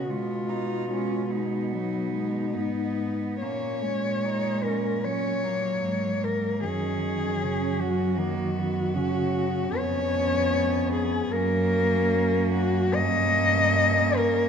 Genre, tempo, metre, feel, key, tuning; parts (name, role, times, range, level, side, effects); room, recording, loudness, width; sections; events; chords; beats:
classical, lyrical piece for cello ensemble; 68-80 BPM; 4/4; rubato; F# major; A4 = 440 Hz
dark cello; melody; 0.0-14.5 s; D#4 to D#5; -27 LUFS; left 4 dB
clear cello; second line; 0.0-14.5 s; A#3 to D#4; -32 LUFS; right 7 dB
dark cello; accompaniment; 0.0-14.5 s; C#3 to B3; -31 LUFS; equal
warm cello; bass; 0.0-14.5 s; E#2 to B2; -29 LUFS; right 2 dB
moderate concert hall reverb, RT60 1.9 s; dark, warm production; -23 LUFS; side -7 dB against mid
0.0-14.5 A section
0.1 G#m/B; 3.4 F#/A#; 6.6 F#5; 9.8 C#7/E#; 11.3 F#; 13.0 D#7/G
| 0.09 0.91 1.74 2.56 | 3.42 4.24 5.05 5.85 | 6.64 7.42 8.18 8.94 | 9.76 10.55 11.32 12.10 | 12.95 13.79